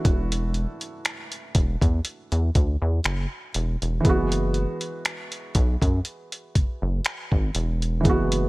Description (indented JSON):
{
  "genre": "contemporary R&B",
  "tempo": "60 BPM",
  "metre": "4/4",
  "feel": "swing 54% on 16ths",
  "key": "unclear",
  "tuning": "A4 = 440 Hz",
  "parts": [
    { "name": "felt-muted upright piano", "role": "accompaniment", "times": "0.0-8.5 s", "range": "E3 to F#4", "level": "-27 LUFS", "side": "right 2 dB", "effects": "none" },
    { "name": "rubbery square bass", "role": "bass", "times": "0.0-8.5 s", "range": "E1 to Gb2", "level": "-24 LUFS", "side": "equal", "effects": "none" },
    { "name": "dusty soul sampler-style drum kit", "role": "drums", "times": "0.0-8.5 s", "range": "finger snaps, hi-hat, kick drum", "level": "-23 LUFS", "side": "equal", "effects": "none" }
  ],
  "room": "little or no reverb",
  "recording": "none",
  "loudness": "-22 LUFS",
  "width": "side -22 dB against mid",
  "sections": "0.0-8.5 A section",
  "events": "none",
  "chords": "0.0 E9sus4; 4.0 Gb9sus4"
}